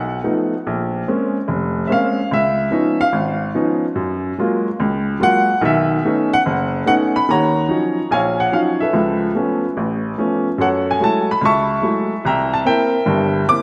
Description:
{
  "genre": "solo jazz",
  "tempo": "145 BPM",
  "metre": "4/4",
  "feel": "swing 67% on 8ths",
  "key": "unclear",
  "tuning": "A4 = 442 Hz",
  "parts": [
    { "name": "clear upright piano", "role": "solo", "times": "0.0-13.6 s", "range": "F1 to D6", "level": "-18 LUFS", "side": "equal", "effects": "none" }
  ],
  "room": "wet lush hall reverb, RT60 1.9 s, studio ambience",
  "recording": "dreamy mix soaked in reverb",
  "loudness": "-18 LUFS",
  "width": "mono",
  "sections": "0.0-7.3 A section; 7.3-13.6 B section",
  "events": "upright piano solo 0.0-7.3",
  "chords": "0.0 Cb7#11; 0.6 Bbm9; 2.3 Db9; 4.0 Gbmaj9; 5.6 Cb9; 7.3 Ebm9; 8.9 Db7alt; 10.6 Gbm9; 12.2 C7"
}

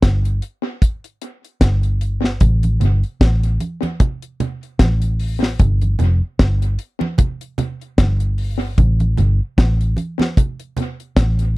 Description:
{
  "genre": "roots reggae",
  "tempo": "75 BPM",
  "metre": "4/4",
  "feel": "swing 57% on 16ths",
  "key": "unclear",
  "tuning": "A4 = 439 Hz",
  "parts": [
    { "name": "vintage muted fingered electric bass", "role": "bass", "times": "0.0-11.6 s", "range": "F1 to A1", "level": "-16 LUFS", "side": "equal", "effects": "none" },
    { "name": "deep reggae drum kit", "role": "drums", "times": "0.0-11.6 s", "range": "hi-hat, kick drum, snare drum", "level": "-16 LUFS", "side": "equal", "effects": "tape echo" },
    { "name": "congas", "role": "percussion", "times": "2.4-11.4 s", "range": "none", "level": "-24 LUFS", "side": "right 4 dB", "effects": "none" }
  ],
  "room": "little or no reverb",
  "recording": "dry, close 1970s-style studio recording",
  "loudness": "-16 LUFS",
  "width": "side -20 dB against mid",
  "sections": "0.0-11.6 A section",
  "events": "none",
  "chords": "none"
}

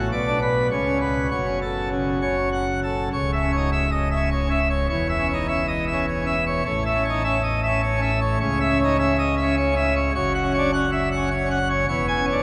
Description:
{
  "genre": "classical, organ toccata",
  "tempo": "103 BPM",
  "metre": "3/4",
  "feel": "straight",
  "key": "F# minor, C# minor from 3.1 s",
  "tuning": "A4 = 440 Hz",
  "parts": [
    { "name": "pipe organ, plenum", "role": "solo", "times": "0.0-12.4 s", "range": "C#1 to G#5", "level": "-22 LUFS", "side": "equal", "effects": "none" }
  ],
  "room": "wet cathedral reverb, RT60 7.0 s",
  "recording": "none",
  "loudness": "-22 LUFS",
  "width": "mono",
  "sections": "0.0-3.1 A section; 3.1-12.4 B section",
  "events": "none",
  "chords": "0.1 Bm; 0.7 Bsus2/C#; 1.3 F#m; 3.1 C#m; 4.9 C#m/E; 6.7 A; 8.4 C#madd9; 10.1 F#5; 11.9 C#m/E"
}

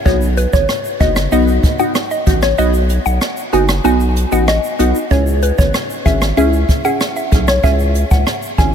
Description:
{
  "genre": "dancehall",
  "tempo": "95 BPM",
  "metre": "4/4",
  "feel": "straight",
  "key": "unclear",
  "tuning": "A4 = 440 Hz",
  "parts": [
    { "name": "mallet-like synth pluck", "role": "melody", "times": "0.1-8.7 s", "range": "B4 to G#5", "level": "-19 LUFS", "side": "equal", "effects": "chorus, phaser, ping-pong delay" },
    { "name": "wavetable chord stab", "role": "accompaniment", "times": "0.1-8.7 s", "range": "B3 to G#4", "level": "-18 LUFS", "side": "equal", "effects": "phaser, sidechain pumping" },
    { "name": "saturated sub bass", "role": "bass", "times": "0.1-8.7 s", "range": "F#1 to C#2", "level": "-16 LUFS", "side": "equal", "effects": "none" },
    { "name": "jazz brush drum kit", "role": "drums", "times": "0.1-8.7 s", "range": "hi-hat, kick drum, rim click, shaker", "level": "-17 LUFS", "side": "equal", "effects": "none" }
  ],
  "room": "light reverb, small room ambience",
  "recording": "none",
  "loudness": "-12 LUFS",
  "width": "side -8 dB against mid",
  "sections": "0.0-8.7 A section",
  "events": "kick muted 2.6-5.1",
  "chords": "0.1 B; 5.1 C#m"
}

